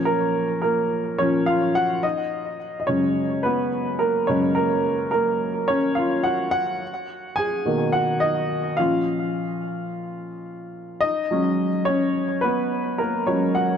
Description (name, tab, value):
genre	pop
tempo	107 BPM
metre	4/4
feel	straight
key	F# major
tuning	A4 = 437 Hz
part	warm baby grand piano	solo	0.0-13.8 s	F#2 to G#5	-20 LUFS	equal	digital delay
room	light reverb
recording	dark, warm production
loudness	-20 LUFS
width	side -8 dB against mid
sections	0.0-13.8 A section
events	grand piano solo 0.0-13.8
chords	0.0 A#m; 2.0 F#sus2; 6.8 Bmaj7; 8.8 A#m; 11.0 F#sus2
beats	| 0.07 0.63 1.20 1.76 | 2.32 2.88 3.45 4.01 | 4.57 5.13 5.70 6.26 | 6.82 7.38 7.95 8.51 | 9.07 9.63 10.19 10.76 | 11.32 11.88 12.44 13.00 | 13.56